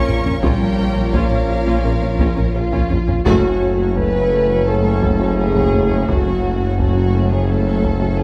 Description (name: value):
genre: cinematic, hybrid orchestral and electronic film score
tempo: 85 BPM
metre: 4/4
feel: straight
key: unclear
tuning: A4 = 435 Hz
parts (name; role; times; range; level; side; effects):
- warm symphonic violin section; melody; 0.0-8.2 s; E#5 to C#6; -37 LUFS; equal; none
- warm studio violin section; second line; 0.0-8.2 s; E#4 to C#5; -31 LUFS; equal; none
- warm symphonic viola section; accompaniment; 0.0-8.2 s; F#3 to A4; -29 LUFS; equal; none
- bright trombone section; sustained chords; 0.0-8.2 s; A2 to C#4; -30 LUFS; equal; none
- dark French horn section; sustained chords; 0.0-8.2 s; C#4 to B4; -24 LUFS; equal; none
- warbly tape-like pad; sustained chords; 0.0-8.2 s; F#3 to C#5; -27 LUFS; equal; chorus, built-in reverb
- rich symphonic cello section; bass; 0.0-8.2 s; F#2 to C#4; -28 LUFS; equal; none
- saturated sub bass; bass; 0.0-8.2 s; F#1 to A#1; -26 LUFS; equal; none
- tight sequenced synth; arpeggios; 0.1-8.2 s; F#3 to A#4; -31 LUFS; equal; none
- clear tuba; bass; 0.1-8.2 s; F#1 to A#1; -27 LUFS; equal; none
- dark symphonic double bass section; bass; 0.1-8.2 s; F#1 to A#1; -26 LUFS; equal; none
- taiko ensemble; drums; 0.1-8.2 s; none; -25 LUFS; equal; none
room: moderate scoring stage reverb, RT60 1.7 s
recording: none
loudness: -17 LUFS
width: mono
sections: 0.0-3.3 A section; 3.3-8.2 A section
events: band accent 3.3-4.0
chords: 0.0 A#m; 3.3 F#m